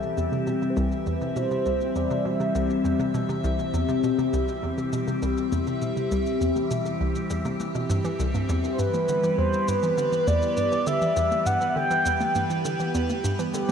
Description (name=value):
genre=ambient, sequencer-driven space music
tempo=101 BPM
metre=4/4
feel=straight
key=unclear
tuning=A4 = 440 Hz
part: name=mellow horn-like synth lead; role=melody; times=0.0-3.1, 8.7-13.7 s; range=G4 to G5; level=-26 LUFS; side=right 1 dB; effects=chorus, shimmer reverb, tape echo
part: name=evolving wavetable pad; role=sustained chords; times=0.0-13.7 s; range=E3 to F#5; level=-26 LUFS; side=left 2 dB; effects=phaser, built-in reverb, shimmer reverb
part: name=shaker and congas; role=percussion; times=0.0-13.7 s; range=none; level=-38 LUFS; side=left 2 dB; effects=tape echo
part: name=hollow square pluck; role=riff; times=0.2-13.7 s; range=C2 to E3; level=-28 LUFS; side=right 1 dB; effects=chorus, tape echo
room=wet lush hall reverb, RT60 3.3 s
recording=dreamy mix soaked in reverb, cassette tape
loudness=-22 LUFS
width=side -7 dB against mid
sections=0.0-13.7 A section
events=fade-in on drum 0.0-13.7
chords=0.0 C; 8.5 Em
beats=0.17 0.77 | 1.36 1.96 2.55 3.15 | 3.74 4.33 4.93 5.52 | 6.12 6.71 7.30 7.90 | 8.49 9.09 9.68 10.27 | 10.87 11.46 12.06 12.65 | 13.24